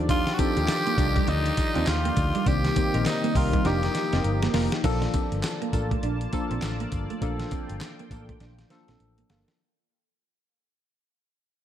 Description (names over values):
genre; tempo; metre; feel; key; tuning
R&B, new jack swing; 101 BPM; 4/4; swing 61% on 16ths; Bb major; A4 = 441 Hz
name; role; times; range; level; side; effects
tine electric piano; accompaniment; 0.0-9.6 s; Eb3 to A4; -31 LUFS; left 4 dB; medium stereo tremolo, slapback echo
sweeping resonant pad; sustained chords; 0.0-9.6 s; C3 to A5; -35 LUFS; left 1 dB; chorus
vintage muted fingered electric bass; bass; 0.0-9.4 s; F1 to Eb2; -28 LUFS; equal; none
raspy tenor saxophone; melody; 0.1-4.5 s; Eb4 to G4; -29 LUFS; equal; slapback echo, ping-pong delay
clean electric guitar; riff; 0.1-9.4 s; G3 to D4; -32 LUFS; right 7 dB; lush chorus, slapback echo
dusty soul sampler-style drum kit; drums; 0.1-9.6 s; crash cymbal, handclaps, hi-hat, kick drum, snare drum, tambourine; -28 LUFS; equal; none
funky polysynth comp; stabs; 0.6-9.5 s; Bb3 to Bb4; -35 LUFS; equal; chorus, slapback echo, ping-pong delay
room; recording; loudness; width
light reverb, digital ambience; none; -23 LUFS; side -10 dB against mid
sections
0.0-4.8 A section; 4.8-9.6 B section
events
drum fill 3.7-4.8, 8.4-9.6; fade-out 4.8-9.6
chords
0.0 Ebmaj9; 2.5 Cm7; 3.7 F9sus4; 4.8 Bbmaj7